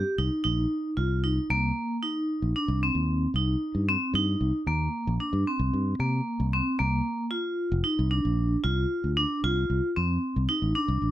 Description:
progressive instrumental, band music in an uneven meter; 114 BPM; 5/4; straight; C minor; A4 = 440 Hz
vibraphone with hard mallets; arpeggios; 0.0-11.1 s; Bb3 to G4; -27 LUFS; equal
fingered electric bass; bass; 0.2-11.1 s; F1 to C3; -26 LUFS; equal
moderate studio reverb, RT60 0.5 s; -24 LUFS; side -13 dB against mid
0.0-1.5 A section; 1.5-11.1 B section
0.0 Cm7; 6.8 C9sus4; 9.4 Dm7

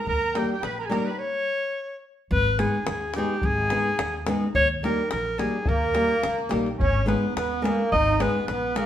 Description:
balkan folk, Balkan wedding band; 107 BPM; 2/4; swing 56% on 16ths; A4 = 437 Hz
clear alto saxophone; melody; 0.0-8.9 s; G4 to D#5; -26 LUFS; equal
musette accordion; second line; 0.0-1.2, 5.7-8.9 s; A#3 to B5; -28 LUFS; right 3 dB
upright bass; bass; 0.1-8.8 s; G#1 to D#2; -30 LUFS; equal
davul; percussion; 0.1-8.9 s; -30 LUFS; left 1 dB
flamenco guitar; accompaniment; 0.4-8.9 s; G3 to G#4; -28 LUFS; left 1 dB
wet studio reverb, RT60 0.9 s; band playing live in one room; -22 LUFS; side -10 dB against mid
0.0-2.3 A section; 2.3-8.9 A section
stop 1.2-2.3
0.1 D#; 1.2 N.C.; 2.3 G#m; 4.6 D#; 6.8 G#m

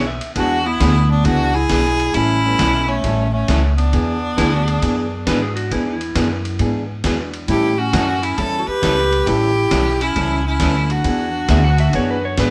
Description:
country, western swing; 135 BPM; 4/4; swing 67% on 8ths; E mixolydian; A4 = 440 Hz
clean lap steel guitar; second line; 0.0-0.3, 4.4-6.7, 11.5-12.5 s; E4 to F#5; -27 LUFS; equal
vintage hollow-body jazz guitar; accompaniment; 0.0-12.5 s; E3 to A4; -26 LUFS; equal
upright bass; bass; 0.0-12.5 s; A1 to A2; -22 LUFS; equal
lo-fi sampler-style drum kit; drums; 0.2-12.5 s; hi-hat, kick drum, ride cymbal, snare drum; -28 LUFS; equal
rich fiddle; melody; 0.4-12.5 s; C#4 to B4; -23 LUFS; equal
mellow clarinet; second line; 0.4-12.5 s; A3 to G4; -25 LUFS; equal
tack piano; accompaniment; 0.4-2.6, 5.3-12.5 s; F#3 to G#4; -32 LUFS; equal
moderate stone room reverb, RT60 1.1 s; band playing live in one room; -18 LUFS; mono
0.4-12.5 A section
0.4 E9; 2.2 A9; 3.9 E9; 7.5 A9; 11.0 E9

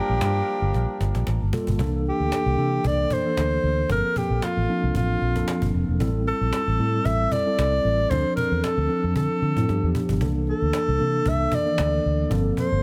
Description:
polished 1980s jazz-funk pop; 114 BPM; 4/4; swing 54% on 16ths; G dorian; A4 = 444 Hz
breathy alto saxophone; melody; 0.0-12.8 s; F4 to E5; -28 LUFS; equal
warm horn section; second line; 0.0-1.5 s; F3 to Bb4; -36 LUFS; equal
mellow tine electric piano; accompaniment; 0.0-12.8 s; Eb3 to A5; -29 LUFS; equal; lush chorus
vintage muted fingered electric bass; bass; 0.1-12.8 s; E1 to D3; -26 LUFS; equal
cajon; drums; 0.1-12.8 s; -33 LUFS; equal
light reverb, studio reverb; -23 LUFS; mono
0.0-1.8 A section; 1.8-12.8 B section
drum fill 0.7-1.8, 9.7-10.2
0.0 Gm9; 1.8 C13; 3.9 Gm11 (rootless); 6.0 Am7; 8.1 Dm7; 9.7 G7; 10.2 C13; 12.3 Gm11

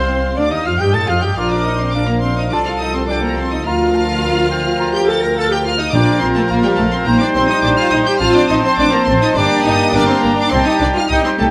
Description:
quick classical-period movement for symphony orchestra; 105 BPM; 4/4; rubato; Bb major; A4 = 445 Hz
rich studio violin section; melody; 0.0-11.4 s; G5 to Bb6; -25 LUFS; equal
clear clarinet; second line; 0.0-11.5 s; C4 to A5; -27 LUFS; equal
concert flute; second line; 0.0-11.5 s; G5 to A6; -25 LUFS; equal
mellow cor anglais; second line; 0.0-11.5 s; Bb4 to A5; -26 LUFS; equal
rich chamber violin section; second line; 0.0-11.5 s; G4 to Bb5; -29 LUFS; equal
rich studio viola section; accompaniment; 0.0-11.5 s; G3 to Bb4; -23 LUFS; equal
mellow French horn section; sustained chords; 0.0-11.5 s; F3 to A4; -24 LUFS; equal
bright trumpet section; stabs; 0.0-11.5 s; G4 to A5; -25 LUFS; equal
clear studio cello section; bass; 0.0-11.5 s; G3 to Bb4; -25 LUFS; equal
rich chamber double bass section; bass; 0.0-11.5 s; G1 to A2; -24 LUFS; equal
timpani; percussion; 5.9-6.7 s; Bb2; -25 LUFS; equal
moderate scoring stage reverb, RT60 1.8 s; -15 LUFS; mono
0.0-11.5 A section
0.0 F7/C; 1.4 Bb; 2.5 F7/C; 3.7 Bb/D; 5.9 Bb; 7.1 Cm7/Bb; 8.2 F/A; 9.4 Gm; 10.5 Cm

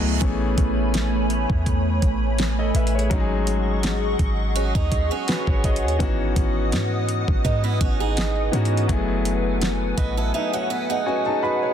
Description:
contemporary R&B; 83 BPM; 4/4; swing 54% on 16ths; A4 = 440 Hz
clear grand piano; accompaniment; 0.0-11.7 s; E3 to B5; -26 LUFS; left 3 dB
hollow soft pad; sustained chords; 0.0-11.7 s; A3 to D#6; -28 LUFS; equal; ensemble chorus
clean 808-style bass; bass; 0.0-10.3 s; F#1 to G#2; -23 LUFS; equal
smooth R&B drum kit; drums; 0.2-10.2 s; hi-hat, kick drum, snare drum; -24 LUFS; equal
picked swing-style acoustic guitar; arpeggios; 4.6-11.7 s; G#3 to B4; -27 LUFS; right 10 dB; ping-pong delay
digital ambience; dense, heavily limited modern master; -19 LUFS; side -9 dB against mid
0.2-11.7 A section
grand piano fill 0.0, 9.6-11.7; drums muted 10.3-11.7
0.2 Amaj9; 3.1 G#7sus4; 6.0 C#m11/G#; 8.9 F#m11

